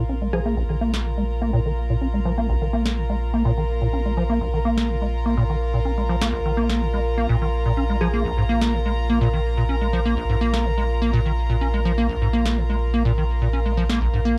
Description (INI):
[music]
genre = acid house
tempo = 125 BPM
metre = 4/4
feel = straight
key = unclear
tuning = A4 = 438 Hz
[part]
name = acid bass, square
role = riff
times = 0.0-14.4 s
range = Bb1 to Db4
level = -26 LUFS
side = equal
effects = lush chorus, cassette tape
[part]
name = warm sub bass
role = bass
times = 0.0-14.4 s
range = Bb1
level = -26 LUFS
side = equal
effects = tube saturation
[part]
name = warm chamber string section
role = texture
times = 0.0-14.4 s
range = F4 to Bb5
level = -31 LUFS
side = equal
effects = none
[part]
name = glassy wavetable pluck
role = melody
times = 0.3-0.7, 8.0-8.4 s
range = Ab4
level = -33 LUFS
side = equal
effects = chorus, digital delay
[part]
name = electronic snare drum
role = drums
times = 0.9-14.0 s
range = none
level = -29 LUFS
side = equal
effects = overdrive
[sound]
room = light reverb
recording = dark, warm production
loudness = -22 LUFS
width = mono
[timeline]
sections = 0.0-14.4 A section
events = filter sweep on acid bass 0.0-14.4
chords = 0.0 Bb5